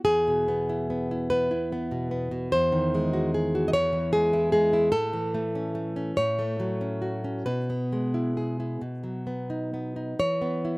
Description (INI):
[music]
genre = romantic piece for solo classical guitar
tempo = 41-51 BPM (dotted quarters)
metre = 6/8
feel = rubato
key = E major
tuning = A4 = 444 Hz
[part]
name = nylon-string guitar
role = solo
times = 0.0-10.8 s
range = E2 to D#5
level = -24 LUFS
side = equal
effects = slapback echo
[sound]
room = little or no reverb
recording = recorded outdoors, with no room sound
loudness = -24 LUFS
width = side -25 dB against mid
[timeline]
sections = 0.1-10.8 A section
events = none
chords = 0.1 E; 2.5 G#7/E; 3.7 E6; 4.9 A; 6.1 F#m/A; 7.5 E/B; 8.8 B; 10.2 E5